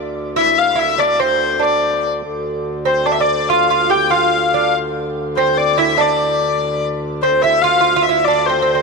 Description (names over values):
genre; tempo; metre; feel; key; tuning
medieval dance; 96 BPM (dotted quarters); 6/8; straight; D minor; A4 = 442 Hz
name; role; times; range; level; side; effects
hand-pumped harmonium; drone; 0.0-8.8 s; D2; -24 LUFS; equal; none
rich hurdy-gurdy; melody; 0.4-8.8 s; C5 to G5; -16 LUFS; left 7 dB; none
lute; second line; 0.4-8.8 s; C4 to G4; -18 LUFS; right 13 dB; none
room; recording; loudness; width
moderate plate reverb, RT60 3.8 s; 1960s-style stereo with parts hard left and right; -13 LUFS; side -3 dB against mid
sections
0.0-7.2 A section; 7.2-8.8 B section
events
none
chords
none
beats
0.37 | 1.00 1.62 | 2.25 2.87 | 3.49 4.12 | 4.74 5.36 | 5.99 6.61 | 7.23 7.86 | 8.48